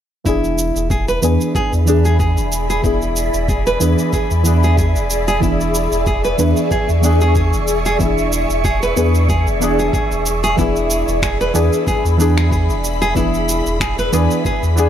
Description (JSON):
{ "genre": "organic downtempo", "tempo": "93 BPM", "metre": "4/4", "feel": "swing 55% on 16ths", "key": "E mixolydian", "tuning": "A4 = 441 Hz", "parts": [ { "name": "deep mellow chord stab", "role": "accompaniment", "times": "0.2-14.9 s", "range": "E3 to G#4", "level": "-20 LUFS", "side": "left 1 dB", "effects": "chorus, sidechain pumping, tape echo" }, { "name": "ethereal airy pad", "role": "sustained chords", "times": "0.9-14.9 s", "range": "G#4 to C#6", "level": "-22 LUFS", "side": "right 1 dB", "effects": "ensemble chorus, built-in reverb, phaser, sidechain pumping" }, { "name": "nylon-string guitar", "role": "arpeggios", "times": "0.3-14.9 s", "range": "D4 to B4", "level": "-21 LUFS", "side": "right 1 dB", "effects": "tape echo" }, { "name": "warm sub bass", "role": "bass", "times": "0.3-14.9 s", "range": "E1 to E2", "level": "-18 LUFS", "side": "equal", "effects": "sidechain pumping" }, { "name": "electronic kick drum", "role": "drums", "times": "0.3-14.6 s", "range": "none", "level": "-21 LUFS", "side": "equal", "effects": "none" }, { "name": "electronic shaker and finger snaps", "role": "drums", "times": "0.3-14.9 s", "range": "none", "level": "-26 LUFS", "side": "right 2 dB", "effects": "none" } ], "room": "light reverb, digital ambience", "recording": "none", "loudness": "-14 LUFS", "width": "side -10 dB against mid", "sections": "0.3-14.9 A section", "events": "none", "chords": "0.3 E7" }